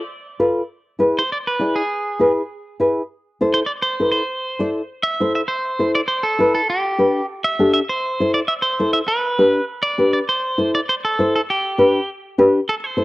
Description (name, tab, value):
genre	latin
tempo	201 BPM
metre	4/4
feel	straight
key	A harmonic minor, A minor from 5.5 s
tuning	A4 = 436 Hz
part	nylon-string guitar	accompaniment	0.4-13.0 s	D4 to D5	-16 LUFS	left 1 dB	none
part	clean electric guitar	melody	1.2-13.0 s	G4 to E5	-20 LUFS	right 1 dB	spring reverb, slapback echo
room	little or no reverb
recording	dry, close 1970s-style studio recording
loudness	-16 LUFS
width	side -19 dB against mid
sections	0.0-5.5 A section; 5.5-13.0 B section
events	none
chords	0.0 Dm (rootless); 0.7 E; 3.1 Am; 6.7 G; 7.9 Am; 9.1 G; 10.3 Am; 11.5 G